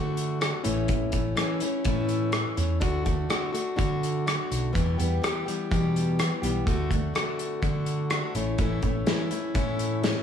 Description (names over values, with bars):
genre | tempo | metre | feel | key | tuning
folk rock and heartland rock | 125 BPM | 4/4 | straight | D major | A4 = 442 Hz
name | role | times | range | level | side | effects
picked plugged-in steel-string acoustic guitar | accompaniment | 0.0-10.2 s | E2 to G4 | -29 LUFS | left 2 dB | none
hollow-body short-scale picked electric bass | bass | 0.0-10.1 s | A1 to E3 | -28 LUFS | equal | none
loose indie drum kit | drums | 0.2-10.1 s | hi-hat, kick drum, rim click, snare drum | -29 LUFS | equal | none
room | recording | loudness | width
light reverb, small room ambience | none | -24 LUFS | side -8 dB against mid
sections
0.0-10.2 A section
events
none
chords
0.0 D; 0.7 A; 2.8 D; 4.7 Em; 6.7 D; 8.3 A